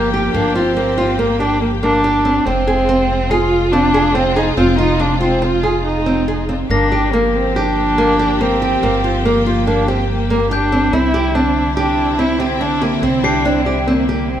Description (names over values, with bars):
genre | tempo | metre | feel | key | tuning
contemporary instrumental, chamber music in an uneven meter | 142 BPM | 5/4 | straight | F dorian | A4 = 441 Hz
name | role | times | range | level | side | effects
dark viola | second line | 0.0-14.4 s | Bb3 to F4 | -17 LUFS | right 1 dB | none
warm studio string section | sustained chords | 0.0-14.4 s | C3 to G4 | -23 LUFS | left 2 dB | none
nylon-string guitar | arpeggios | 0.0-14.4 s | Bb3 to Ab4 | -18 LUFS | equal | none
upright bass | bass | 0.0-14.4 s | F1 to C2 | -22 LUFS | equal | none
glockenspiel with soft plastic mallets | texture | 0.0-14.4 s | G6 to C7 | -27 LUFS | left 6 dB | none
room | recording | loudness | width
light reverb | none | -13 LUFS | side -10 dB against mid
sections
0.0-14.4 A section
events
none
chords
0.0 Gm7; 2.5 Fm; 6.7 Gm7; 10.9 Cadd9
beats
| 0.34 0.76 1.19 1.62 2.04 | 2.46 2.88 3.31 3.73 4.15 | 4.57 4.99 5.42 5.85 6.27 | 6.70 7.13 7.56 7.98 8.40 | 8.83 9.25 9.67 10.09 10.51 | 10.93 11.35 11.77 12.19 12.61 | 13.03 13.45 13.87 14.29